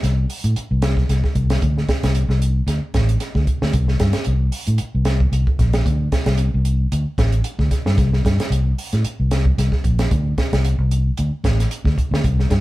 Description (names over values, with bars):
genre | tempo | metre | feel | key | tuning
afrobeat | 113 BPM | 4/4 | swing 54% on 16ths | unclear | A4 = 440 Hz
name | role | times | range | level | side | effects
fingered electric bass | bass | 0.0-12.6 s | A1 to A2 | -18 LUFS | equal | none
compact cocktail drum kit | drums | 0.0-12.6 s | hi-hat, kick drum, snare drum | -21 LUFS | right 1 dB | none
room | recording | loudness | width
light reverb | band playing live in one room | -16 LUFS | side -18 dB against mid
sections
0.0-12.6 A section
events
none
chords
none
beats
0.03 0.56 1.09 | 1.62 2.15 2.68 3.21 | 3.74 4.28 4.81 5.34 | 5.87 6.40 6.93 7.46 | 7.99 8.52 9.05 9.58 | 10.11 10.64 11.17 11.70 | 12.23